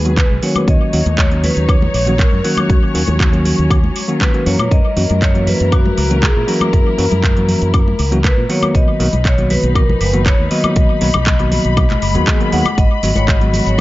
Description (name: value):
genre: nu-disco, nu disco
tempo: 119 BPM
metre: 4/4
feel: straight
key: unclear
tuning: A4 = 441 Hz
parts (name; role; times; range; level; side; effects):
- vibraphone with medium hard mallets; melody; 0.0-13.8 s; F#4 to F#5; -21 LUFS; equal; analog delay
- bell-like tine electric piano; accompaniment; 0.0-13.8 s; D#3 to F#4; -19 LUFS; equal; sidechain pumping, low-pass filter, tape echo
- muted studio string section; sustained chords; 0.0-13.8 s; F#3 to B5; -25 LUFS; left 4 dB; sidechain pumping
- fingered electric bass with an envelope filter; bass; 0.0-13.8 s; F#1 to A#2; -17 LUFS; equal; none
- house drum kit; drums; 0.1-13.8 s; handclaps, hi-hat, shaker, woodblock; -22 LUFS; equal; tape echo
- electronic kick drum; drums; 0.2-13.8 s; none; -14 LUFS; equal; none
- congas; percussion; 0.2-13.6 s; none; -25 LUFS; left 2 dB; none
- swell; sound effects; 12.0-12.8 s; none; -26 LUFS; equal; none
room: light reverb, digital ambience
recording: echo-heavy mix, nothing above 7.5 kHz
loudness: -12 LUFS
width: side -17 dB against mid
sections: 0.0-13.8 A section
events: filter sweep on tine electric piano 0.0-13.8; swell 12.0-12.8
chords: 0.0 G#m7; 0.7 D#m7; 4.5 F#7; 8.7 Bmaj7; 12.8 G#m7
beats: 0.18 | 0.68 1.18 1.69 2.19 | 2.70 3.20 3.71 4.21 | 4.71 5.22 5.72 6.23 | 6.73 7.23 7.74 8.24 | 8.75 9.25 9.76 10.26 | 10.76 11.27 11.77 12.28 | 12.78 13.29 13.79